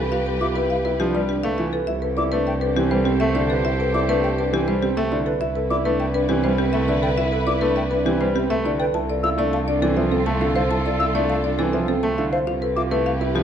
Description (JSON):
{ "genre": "classical, minimalist pattern music", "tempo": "102 BPM", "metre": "3/4", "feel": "straight", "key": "unclear", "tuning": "A4 = 440 Hz", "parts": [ { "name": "marimba with medium hard mallets", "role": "melody", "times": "0.0-13.4 s", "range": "G4 to A5", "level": "-25 LUFS", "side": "left 8 dB", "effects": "none" }, { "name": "clear clarinet", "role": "second line", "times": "0.0-13.4 s", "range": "A4 to C5", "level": "-32 LUFS", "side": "right 2 dB", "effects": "none" }, { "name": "warm symphonic string section", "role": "sustained chords", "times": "0.0-13.4 s", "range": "E4 to B4", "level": "-30 LUFS", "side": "left 1 dB", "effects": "none" }, { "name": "warm concert grand piano", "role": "arpeggios", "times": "0.0-13.4 s", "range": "C4 to C5", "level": "-25 LUFS", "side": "right 6 dB", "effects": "none" }, { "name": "rich cello", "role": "bass", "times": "0.0-13.4 s", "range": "C2", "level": "-25 LUFS", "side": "right 2 dB", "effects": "none" }, { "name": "hollow concert flute", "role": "arpeggios", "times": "0.4-13.1 s", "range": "F5 to E6", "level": "-28 LUFS", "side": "left 3 dB", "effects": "none" }, { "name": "bright concert grand piano", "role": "accompaniment", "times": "1.0-13.4 s", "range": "D3 to A3", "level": "-26 LUFS", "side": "right 1 dB", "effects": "none" } ], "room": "moderate recital hall reverb, RT60 1.6 s", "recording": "dark, warm production", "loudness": "-19 LUFS", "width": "side -8 dB against mid", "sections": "0.0-13.4 A section", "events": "none", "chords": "0.0 G7/C; 1.9 Am9/C; 8.9 Fmaj7/C; 12.5 G9/C" }